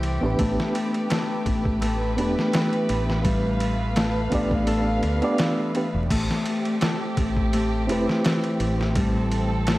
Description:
trip hop; 84 BPM; 4/4; swing 54% on 16ths; A minor; A4 = 441 Hz
reed electric piano; accompaniment; 0.0-9.8 s; B3 to D5; -28 LUFS; right 1 dB; fast tremolo, tape echo
muted chamber string section; sustained chords; 0.0-9.8 s; A3 to F5; -30 LUFS; right 2 dB; vintage 12-bit sampler grit
Celtic harp; arpeggios; 0.0-9.8 s; E3 to A4; -26 LUFS; left 2 dB; vintage 12-bit sampler grit, tape echo
deep dub fingered electric bass; bass; 0.0-9.8 s; E1 to D2; -26 LUFS; equal
trip hop sampler-style drum kit; drums; 0.0-9.8 s; crash cymbal, kick drum, ride cymbal, snare drum; -28 LUFS; equal; overdrive, studio reverb
digital ambience; dry, gritty hardware recording, vinyl crackle; -21 LUFS; side -18 dB against mid
0.0-6.1 A section; 6.1-9.8 B section
kick drops out 4.7-6.1
0.4 G; 6.1 Am7
| 0.39 1.10 1.82 2.53 | 3.25 3.96 4.67 5.39 | 6.10 6.82 7.53 8.24 | 8.96 9.67

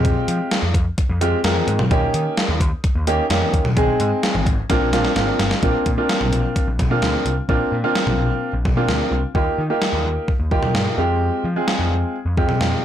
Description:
synth-pop; 129 BPM; 4/4; straight; Eb major; A4 = 440 Hz
warm baby grand piano; accompaniment; 0.0-12.8 s; Ab3 to Bb4; -20 LUFS; right 1 dB
overdriven picked electric bass; bass; 0.0-12.7 s; G1 to F3; -22 LUFS; equal; transformer saturation
gated 80s digital drum machine; drums; 0.0-12.7 s; hi-hat, kick drum, snare drum, toms; -20 LUFS; equal; gated reverb, gated reverb snare, overdrive
moderate studio ambience, RT60 0.5 s; blown-out, overdriven recording, overdrive; -17 LUFS; side -10 dB against mid
0.0-5.6 A section; 5.6-9.4 B section; 9.4-12.8 C section
drum fill 4.7-5.6
0.0 Fmadd9; 1.9 Eb7; 3.8 Ab; 4.7 Bbadd9; 9.4 Ebadd9; 11.0 Fmadd9
| 0.05 0.51 0.98 1.44 | 1.91 2.37 2.84 3.30 | 3.77 4.24 4.70 5.17 | 5.63 6.09 6.56 7.03 | 7.49 7.96 8.42 8.89 | 9.35 9.82 10.28 10.75 | 11.21 11.68 12.14 12.61

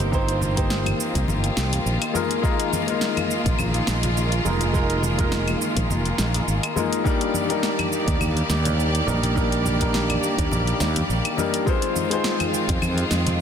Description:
sunset chillout; 104 BPM; 4/4; swing 54% on 16ths; A4 = 440 Hz
warm grand piano; accompaniment; 0.0-13.4 s; G3 to C5; -25 LUFS; moving between left 7 dB and right 4 dB; auto-pan, digital delay
clear studio string section; sustained chords; 0.0-13.4 s; Eb3 to D5; -26 LUFS; equal
fretless electric bass; bass; 0.0-13.4 s; F1 to F2; -24 LUFS; right 1 dB
deep house drum kit; drums; 0.0-13.4 s; claves, hi-hat, shaker, snare drum; -28 LUFS; equal; overdrive
electronic kick drum; drums; 0.1-12.8 s; -25 LUFS; right 1 dB; overdrive
congas; percussion; 0.4-13.4 s; -32 LUFS; left 2 dB
moderate lush hall reverb, RT60 1.8 s, digital ambience; dense, heavily limited modern master; -20 LUFS; side -8 dB against mid
0.0-13.4 A section
0.0 Cm7; 2.1 Bb7sus4; 7.1 Ebmaj7; 11.7 Fm7
| 0.13 0.71 1.28 1.86 | 2.44 3.01 3.59 4.17 | 4.74 5.32 5.90 6.47 | 7.05 7.63 8.21 8.78 | 9.36 9.94 10.51 11.09 | 11.67 12.24 12.82 13.40

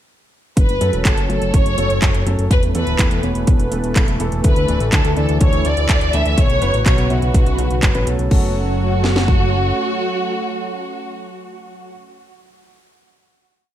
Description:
italo disco; 124 BPM; 4/4; straight; F# minor; A4 = 441 Hz
warm symphonic violin section; melody; 0.6-11.9 s; F#4 to E5; -22 LUFS; equal; tape echo
warm analog pad; sustained chords; 0.6-11.9 s; C#3 to C#5; -25 LUFS; right 1 dB; chorus
fat analog bass; bass; 0.6-9.7 s; D1 to F#2; -19 LUFS; equal
house drum kit; drums; 0.6-9.4 s; kick drum, snare drum; -15 LUFS; equal
house drum kit; drums; 0.6-8.4 s; crash cymbal, handclaps, hi-hat; -24 LUFS; right 1 dB; gated reverb
dark concert grand piano; stabs; 0.8-11.9 s; B2 to E5; -26 LUFS; left 1 dB
digital ambience; -14 LUFS; side -11 dB against mid
0.6-8.3 verse; 8.3-12.2 final chord
0.6 F#m; 2.5 Esus4; 4.4 Dsus2; 6.4 Bsus2; 8.3 F#m
| 0.57 1.05 1.54 2.02 | 2.51 2.99 3.47 3.96 | 4.44 4.92 5.41 5.89 | 6.38 6.86 7.34 7.83 | 8.31 8.80 9.28 9.76 | 10.25 10.73 11.21 11.70

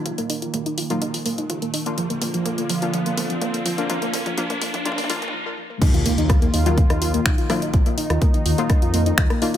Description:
melodic techno; 125 BPM; 4/4; straight; Eb harmonic minor; A4 = 437 Hz
warm analog pad; sustained chords; 0.0-9.6 s; D3 to F4; -29 LUFS; right 2 dB; chorus, tremolo, sidechain pumping
synth brass stab; stabs; 0.0-9.6 s; Gb3 to F4; -28 LUFS; left 3 dB; chorus, sidechain pumping, digital delay
riser and impact; sound effects; 1.1-7.7 s; -30 LUFS; equal
soft round pluck; arpeggios; 0.1-9.6 s; F3 to F4; -26 LUFS; equal; chorus, cassette tape, sidechain pumping, digital delay
swelling detuned saw bass; bass; 0.1-9.3 s; Bb1 to F2; -25 LUFS; equal; sidechain pumping, high-pass filter
house drum kit; drums; 0.1-9.6 s; crash cymbal, finger snaps, hi-hat, rim click, toms; -26 LUFS; left 1 dB; high-pass filter on snare, high-pass filter on hats, high-pass filter on toms, high-pass filter on cymbals
electronic kick drum; drums; 5.8-9.3 s; -18 LUFS; equal
light reverb; high-pass filter; -19 LUFS; side -11 dB against mid
0.0-5.8 A section; 5.8-9.6 B section
build-up 0.0-5.8; drum fill 0.0-5.3; filter sweep on synth arpeggio sound 0.0-5.8; filter sweep on analog synth pad 0.0-5.8; riser 1.1-5.3; break 5.3-5.8; drop 5.8-9.6; impact 5.8-7.7
0.0 Ebmadd9; 2.0 Bb; 5.8 Ebmadd9
| 0.06 0.54 1.02 1.50 | 1.98 2.46 2.94 3.42 | 3.90 4.38 4.86 5.34 | 5.82 6.30 6.78 7.26 | 7.74 8.22 8.70 9.18

